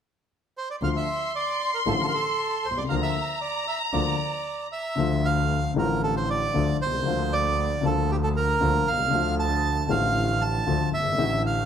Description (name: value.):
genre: tango.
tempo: 116 BPM.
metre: 4/4.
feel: rubato.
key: D minor.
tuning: A4 = 440 Hz.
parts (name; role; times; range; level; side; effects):
bandoneon; melody; 0.6-11.7 s; G4 to A5; -27 LUFS; right 4 dB; none.
warm studio violin section; second line; 0.8-4.9 s; Bb5 to C6; -28 LUFS; equal; none.
dark upright piano; accompaniment; 0.8-11.7 s; F#1 to F4; -26 LUFS; left 5 dB; none.
clear double bass; bass; 0.8-11.7 s; G1 to D2; -29 LUFS; right 2 dB; none.
room: moderate large studio reverb, RT60 0.9 s.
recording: none.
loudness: -22 LUFS.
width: side -8 dB against mid.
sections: 0.8-5.0 A section; 5.0-11.7 B section.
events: none.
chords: 0.0 N.C.; 0.8 Dm; 2.9 Bb/D; 5.0 Dm; 7.1 Bb/D; 9.1 Dm.